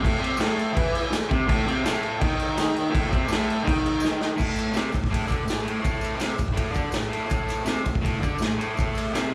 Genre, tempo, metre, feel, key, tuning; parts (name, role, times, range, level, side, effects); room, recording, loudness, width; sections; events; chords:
garage rock duo or trio; 165 BPM; 4/4; straight; A minor; A4 = 439 Hz
raw garage guitar; riff; 0.0-9.3 s; A2 to E3; -28 LUFS; equal; overdrive, spring reverb, slapback echo
raw garage drum kit; drums; 0.0-9.2 s; crash cymbal, kick drum, ride cymbal, snare drum; -28 LUFS; equal
tambourine; percussion; 0.4-9.2 s; -47 LUFS; equal
light reverb; live gig heard through the venue's PA, club reverb; -25 LUFS; mono
0.0-4.4 A section; 4.4-9.3 B section
drum fill 4.0-4.4